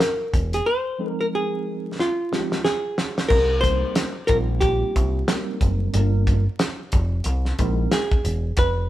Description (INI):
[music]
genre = hip hop, jazz-hop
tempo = 91 BPM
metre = 4/4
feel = swing 60% on 16ths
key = unclear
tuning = A4 = 437 Hz
[part]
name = hollow-body jazz guitar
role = melody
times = 0.0-8.9 s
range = F4 to C5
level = -23 LUFS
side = equal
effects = none
[part]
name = cloth-damped thuddy drum kit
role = drums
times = 0.0-8.8 s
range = crash cymbal, hi-hat, kick drum, snare drum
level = -23 LUFS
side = equal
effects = none
[part]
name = deep dub picked electric bass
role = bass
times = 0.3-8.9 s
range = E1 to C2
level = -22 LUFS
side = equal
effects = none
[part]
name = mellow tine electric piano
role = accompaniment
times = 1.0-8.0 s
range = F3 to Bb4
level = -28 LUFS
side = right 1 dB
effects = medium stereo tremolo
[sound]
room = light reverb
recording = band playing live in one room, vinyl crackle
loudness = -20 LUFS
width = side -14 dB against mid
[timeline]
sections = 0.0-3.3 A section; 3.3-8.9 B section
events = break 0.7-3.3; drum fill 2.0-3.3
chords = 0.0 Fm7; 3.3 Cm7; 5.9 Gm7; 7.3 C7alt